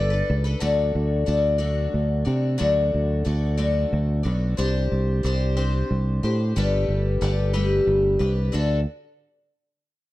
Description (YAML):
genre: folk rock and heartland rock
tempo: 61 BPM (dotted quarters)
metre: 6/8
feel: straight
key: D mixolydian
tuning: A4 = 440 Hz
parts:
  - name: picked twelve-string acoustic guitar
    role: accompaniment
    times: 0.0-8.8 s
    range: D3 to D5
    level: -24 LUFS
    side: left 3 dB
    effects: none
  - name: fingered electric bass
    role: bass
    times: 0.0-8.8 s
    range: G1 to C3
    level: -22 LUFS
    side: right 1 dB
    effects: none
room: light reverb, small room ambience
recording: dark, warm production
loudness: -20 LUFS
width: side -17 dB against mid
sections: 0.6-8.5 A section; 8.5-10.1 B section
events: none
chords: 0.0 Gadd9; 0.6 D; 4.6 Csus2; 6.6 Gadd9; 8.5 D